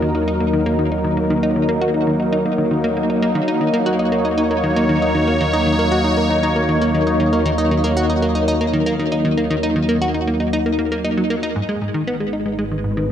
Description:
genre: ambient, sequencer-driven space music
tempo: 117 BPM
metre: 4/4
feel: straight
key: unclear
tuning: A4 = 440 Hz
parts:
  - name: sweeping resonant pad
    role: sustained chords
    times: 0.0-13.1 s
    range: F#3 to C#5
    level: -18 LUFS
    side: left 1 dB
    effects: chorus
  - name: plucky analog bass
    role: riff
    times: 0.0-13.1 s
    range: G#2 to F#4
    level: -20 LUFS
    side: equal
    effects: cassette tape, tape echo
  - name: analog drone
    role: bass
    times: 0.0-13.1 s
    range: G#1 to D#2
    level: -26 LUFS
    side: equal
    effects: chorus
room: moderate plate reverb, RT60 2.7 s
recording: dreamy mix soaked in reverb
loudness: -16 LUFS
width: side -9 dB against mid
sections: 0.0-11.6 A section; 11.6-13.1 B section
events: none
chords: 0.0 D#m; 11.6 G#m

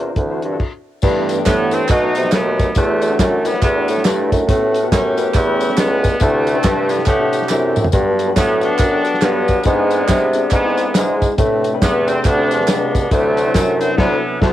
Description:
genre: uptempo gospel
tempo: 139 BPM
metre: 4/4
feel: swing 61% on 8ths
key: G major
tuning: A4 = 435 Hz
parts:
  - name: warm grand piano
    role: accompaniment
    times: 0.0-14.5 s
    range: G2 to D5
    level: -22 LUFS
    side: left 8 dB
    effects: cassette tape
  - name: tonewheel organ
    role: sustained chords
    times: 0.0-14.5 s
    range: C3 to F#5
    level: -25 LUFS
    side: right 7 dB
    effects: chorus vibrato, slow rotary speaker, cassette tape
  - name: warm bassoon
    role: bass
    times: 0.0-14.5 s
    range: C#2 to C3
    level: -18 LUFS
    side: equal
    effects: none
  - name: warm soul drum kit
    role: drums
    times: 0.2-14.5 s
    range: crash cymbal, hi-hat, kick drum, snare drum, toms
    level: -18 LUFS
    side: equal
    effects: cassette tape
  - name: tambourine and handclaps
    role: percussion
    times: 1.0-13.9 s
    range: none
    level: -28 LUFS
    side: right 3 dB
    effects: none
  - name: warm horn section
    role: melody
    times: 1.5-14.5 s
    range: B2 to G4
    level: -20 LUFS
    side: equal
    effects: plate reverb
room: light reverb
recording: home recording on cassette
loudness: -13 LUFS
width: side -13 dB against mid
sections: 0.0-1.0 A section; 1.0-14.5 B section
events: stop 0.6-1.0; drum fill 7.5-7.9; band accent 14.0-14.5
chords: 0.2 D9; 1.0 G69; 1.9 B7; 2.8 Em11; 4.5 A13; 6.2 D9sus4; 7.9 Gmaj9; 9.7 E7b13/G#; 11.4 Am11; 13.1 D9

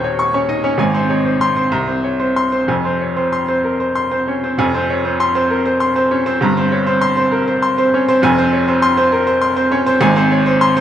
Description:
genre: classical, virtuoso piano study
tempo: 66 BPM (dotted quarters)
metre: 6/8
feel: rubato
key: F minor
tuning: A4 = 439 Hz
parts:
  - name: bright baby grand piano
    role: solo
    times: 0.0-10.8 s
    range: Eb1 to Db6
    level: -13 LUFS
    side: equal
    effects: none
room: wet recital hall reverb, RT60 1.6 s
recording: dark, warm production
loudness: -13 LUFS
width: side -10 dB against mid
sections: 0.0-4.6 A section; 4.6-10.8 A section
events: none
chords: 0.0 Eb7; 0.8 Ab; 1.7 Bbmadd9/C; 2.7 Fm; 6.4 C5/G; 8.2 Fm; 10.0 Abadd11

